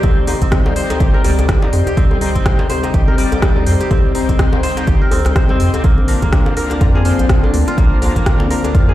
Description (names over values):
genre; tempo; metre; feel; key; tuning
afro house; 124 BPM; 4/4; swing 58% on 16ths; C minor; A4 = 440 Hz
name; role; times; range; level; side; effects
warm analog pad; sustained chords; 0.0-8.9 s; C3 to D5; -23 LUFS; left 2 dB; chorus, sidechain pumping
kora; arpeggios; 0.0-8.9 s; F3 to C5; -22 LUFS; equal; sidechain pumping, digital delay
overdriven tonewheel organ; stabs; 0.0-8.9 s; C4 to D5; -23 LUFS; left 3 dB; chorus vibrato, slow rotary speaker, sidechain pumping, digital delay
round analog bass; bass; 0.0-8.9 s; G1 to F2; -17 LUFS; equal; sidechain pumping
afro-pop drum kit; drums; 0.0-8.9 s; hi-hat, rim click; -24 LUFS; equal; none
electronic kick drum; drums; 0.0-8.9 s; none; -14 LUFS; equal; none
djembe; percussion; 0.0-8.7 s; none; -22 LUFS; left 1 dB; none
downlifter; sound effects; 0.0-2.0 s; none; -35 LUFS; equal; none
room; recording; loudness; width
digital ambience; played on a big sound system in a bare room, large studio reverb; -12 LUFS; side -14 dB against mid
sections
0.0-8.9 A section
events
none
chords
0.0 Cm; 5.8 Bbadd9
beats
| 0.04 0.52 1.00 1.49 | 1.97 2.46 2.94 3.42 | 3.91 4.39 4.87 5.36 | 5.84 6.33 6.81 7.29 | 7.78 8.26 8.74